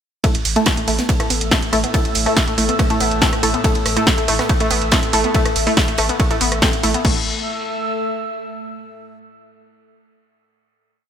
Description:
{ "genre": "driving peak-time techno", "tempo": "141 BPM", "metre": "4/4", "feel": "straight", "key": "unclear", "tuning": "A4 = 440 Hz", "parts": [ { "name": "warbly dusty pluck", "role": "riff", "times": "0.2-7.2 s", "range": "A3 to C4", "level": "-23 LUFS", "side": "right 2 dB", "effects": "chorus, sidechain pumping, ping-pong delay" }, { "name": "filtered dub chord stab", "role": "stabs", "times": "0.2-7.2 s", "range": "A3 to A4", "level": "-24 LUFS", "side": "left 4 dB", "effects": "chorus, sidechain pumping, ping-pong delay" }, { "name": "analog drone", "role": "drone", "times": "1.5-7.1 s", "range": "A2 to A3", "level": "-30 LUFS", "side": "left 1 dB", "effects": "none" }, { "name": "crisp fusion drum kit", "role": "drums", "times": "0.2-6.9 s", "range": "ride cymbal, snare drum", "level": "-29 LUFS", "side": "right 2 dB", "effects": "sidechain pumping on cymbals, high-pass filter on cymbals, high-pass filter on snare, high-pass filter on room" }, { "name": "electronic kick drum", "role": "drums", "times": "0.2-7.1 s", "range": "none", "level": "-20 LUFS", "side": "equal", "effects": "none" }, { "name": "punchy analog drum machine", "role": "drums", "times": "0.2-7.1 s", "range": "crash cymbal, hi-hat, ride cymbal, rim click, snare drum", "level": "-20 LUFS", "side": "right 1 dB", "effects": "sidechain pumping on hats, sidechain pumping on cymbals" }, { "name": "warbly tape-like pad", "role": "texture", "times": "0.2-8.7 s", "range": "A3 to E6", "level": "-25 LUFS", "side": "left 1 dB", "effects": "chorus, built-in reverb, sidechain pumping" }, { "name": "saturated sub bass", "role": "bass", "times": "0.3-7.2 s", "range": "A1", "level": "-27 LUFS", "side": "equal", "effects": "overdrive, sidechain pumping, low-pass filter" } ], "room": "moderate lush hall reverb, RT60 2.0 s", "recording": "bright 1980s-style digital production", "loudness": "-15 LUFS", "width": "side -8 dB against mid", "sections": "0.2-7.0 drop; 7.0-8.7 final chord", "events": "drop 0.2-7.0", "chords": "0.2 A5", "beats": "| 0.24 0.66 1.09 1.51 | 1.94 2.37 2.79 3.22 | 3.64 4.07 4.49 4.92 | 5.34 5.77 6.20 6.62 | 7.05 7.47 7.90 8.32" }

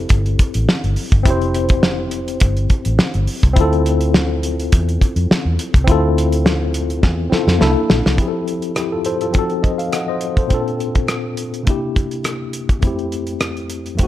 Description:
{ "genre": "lush 1970s-style soul", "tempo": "104 BPM", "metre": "4/4", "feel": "swing 54% on 16ths", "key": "F major", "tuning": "A4 = 439 Hz", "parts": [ { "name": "tine electric piano", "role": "accompaniment", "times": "0.0-14.1 s", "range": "F2 to Gb5", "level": "-20 LUFS", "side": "left 3 dB", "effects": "overdrive, fast stereo tremolo" }, { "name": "vintage muted fingered electric bass", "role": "bass", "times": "0.0-8.2 s", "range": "F1 to F2", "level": "-18 LUFS", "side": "equal", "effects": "none" }, { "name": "cloth-damped thuddy drum kit", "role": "drums", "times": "0.1-14.1 s", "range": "hi-hat, kick drum, rim click, snare drum", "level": "-16 LUFS", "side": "equal", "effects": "none" } ], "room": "studio reverb", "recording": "none", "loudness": "-15 LUFS", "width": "side -13 dB against mid", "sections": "0.0-8.2 A section; 8.2-14.1 B section", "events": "drum fill 7.0-8.2", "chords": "0.0 Fmaj9; 3.6 Dm7; 7.6 C13; 8.2 Fmaj7; 9.3 F7b9; 10.5 Bbmaj7; 11.7 C9; 12.8 Fmaj7", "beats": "0.10 0.68 | 1.25 1.83 2.41 2.99 | 3.56 4.14 4.72 5.30 | 5.87 6.45 7.03 7.61 | 8.19 8.77 9.35 9.93 | 10.51 11.09 11.67 12.25 | 12.83 13.41 13.99" }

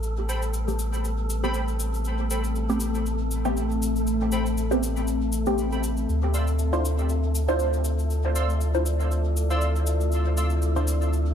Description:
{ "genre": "dub techno", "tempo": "119 BPM", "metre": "4/4", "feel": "swing 56% on 16ths", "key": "A minor", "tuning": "A4 = 441 Hz", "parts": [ { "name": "deep dark ambient pad", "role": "sustained chords", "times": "0.6-11.3 s", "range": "A3 to D5", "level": "-31 LUFS", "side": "left 3 dB", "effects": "chorus, built-in reverb" }, { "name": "soft dub sub bass", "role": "bass", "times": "0.0-11.3 s", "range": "A1 to D2", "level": "-25 LUFS", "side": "equal", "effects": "none" }, { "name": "cabasa", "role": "percussion", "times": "0.0-11.2 s", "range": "none", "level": "-37 LUFS", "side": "left 4 dB", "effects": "dub echo" }, { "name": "wind-like tuned noise texture", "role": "texture", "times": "0.0-11.3 s", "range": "A3 to A4", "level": "-35 LUFS", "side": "left 1 dB", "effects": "built-in reverb" }, { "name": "warbly lo-fi synth keys", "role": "riff", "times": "0.3-10.5 s", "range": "A4 to E6", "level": "-35 LUFS", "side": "right 2 dB", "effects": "chorus, dub echo" }, { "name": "filtered dub chord stab", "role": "stabs", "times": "0.7-10.9 s", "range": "A3 to C5", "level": "-29 LUFS", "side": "right 1 dB", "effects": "phaser, dub echo" } ], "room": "light reverb", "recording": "echo-heavy mix", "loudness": "-22 LUFS", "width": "side -8 dB against mid", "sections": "0.0-11.3 A section", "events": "filter sweep on synth stab 0.0-11.3; filter sweep on ambient pad 0.0-11.3", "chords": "0.0 Am9; 6.1 Dm9", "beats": "| 0.04 0.54 1.04 1.55 | 2.05 2.56 3.06 3.56 | 4.07 4.57 5.08 5.58 | 6.08 6.59 7.09 7.60 | 8.10 8.61 9.11 9.62 | 10.12 10.62 11.13" }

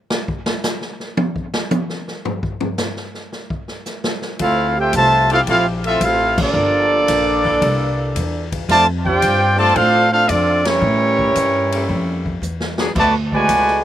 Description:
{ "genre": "jazz, big band swing", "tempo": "112 BPM", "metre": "4/4", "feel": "swing 68% on 8ths", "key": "D minor", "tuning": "A4 = 441 Hz", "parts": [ { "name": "swinging big-band drum kit", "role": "drums", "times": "0.1-13.8 s", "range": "crash cymbal, hi-hat, kick drum, ride cymbal, snare drum, toms", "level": "-24 LUFS", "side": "left 1 dB", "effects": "none" }, { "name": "clear trumpet section", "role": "melody", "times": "4.4-13.8 s", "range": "Bb3 to A5", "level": "-15 LUFS", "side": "equal", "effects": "slapback echo" }, { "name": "mellow trombone section", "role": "second line", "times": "4.4-13.8 s", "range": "A2 to G4", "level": "-22 LUFS", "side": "right 4 dB", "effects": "slapback echo" }, { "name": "upright bass", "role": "bass", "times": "4.4-13.8 s", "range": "G1 to A2", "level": "-21 LUFS", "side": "equal", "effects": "none" }, { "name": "clear saxophone section", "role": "sustained chords", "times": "5.3-12.9 s", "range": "E3 to A4", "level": "-26 LUFS", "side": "left 3 dB", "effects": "none" } ], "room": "little or no reverb", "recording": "none", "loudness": "-15 LUFS", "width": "side -12 dB against mid", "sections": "0.0-4.4 A section; 4.4-13.8 B section", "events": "drum solo 0.0-4.4; band accent 6.3, 10.6; drum fill 12.4-13.0", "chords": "0.0 N.C.; 4.4 Dm11; 6.5 Gm9; 7.6 C13; 8.7 F6; 10.8 A7b9; 13.0 D6", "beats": "| 0.11 0.65 1.18 1.72 | 2.25 2.79 3.33 3.86 | 4.40 4.94 5.47 6.01 | 6.54 7.08 7.61 8.15 | 8.68 9.22 9.75 10.29 | 10.82 11.36 11.89 12.43 | 12.96 13.49" }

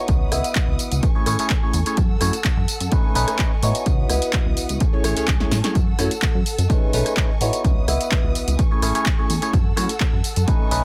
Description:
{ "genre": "filtered disco house", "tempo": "127 BPM", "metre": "4/4", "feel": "straight", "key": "F# dorian", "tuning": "A4 = 439 Hz", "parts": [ { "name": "bell-like tine electric piano", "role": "accompaniment", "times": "0.0-10.8 s", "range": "A3 to E5", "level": "-27 LUFS", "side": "equal", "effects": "phaser, sidechain pumping" }, { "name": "warm symphonic string section", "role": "sustained chords", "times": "0.0-10.8 s", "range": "A4 to E6", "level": "-34 LUFS", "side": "equal", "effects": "vintage 12-bit sampler grit, sidechain pumping" }, { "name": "plucky analog bass", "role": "bass", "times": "0.1-10.8 s", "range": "A1 to A2", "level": "-25 LUFS", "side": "equal", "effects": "sidechain pumping" }, { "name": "electronic kick drum", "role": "drums", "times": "0.1-10.6 s", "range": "none", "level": "-22 LUFS", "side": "equal", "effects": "none" }, { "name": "punchy analog drum machine", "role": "drums", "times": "0.1-10.8 s", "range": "handclaps, hi-hat, rim click, snare drum, tambourine", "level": "-28 LUFS", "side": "equal", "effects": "sidechain pumping on hats, sidechain pumping on perc" } ], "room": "light reverb", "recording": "none", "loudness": "-20 LUFS", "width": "mono", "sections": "0.0-10.8 A section", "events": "drum fill 5.4-5.8", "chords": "0.1 C#m11; 1.0 Amaj7; 2.0 F#m7; 2.9 B13; 3.9 C#m11; 4.8 Amaj7; 5.8 F#m7; 6.7 B13; 7.6 C#m11; 8.6 Amaj7; 9.5 F#m7", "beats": "| 0.09 0.56 1.03 1.50 | 1.98 2.45 2.92 3.39 | 3.87 4.34 4.81 5.28 | 5.76 6.23 6.70 7.17 | 7.64 8.12 8.59 9.06 | 9.54 10.01 10.48" }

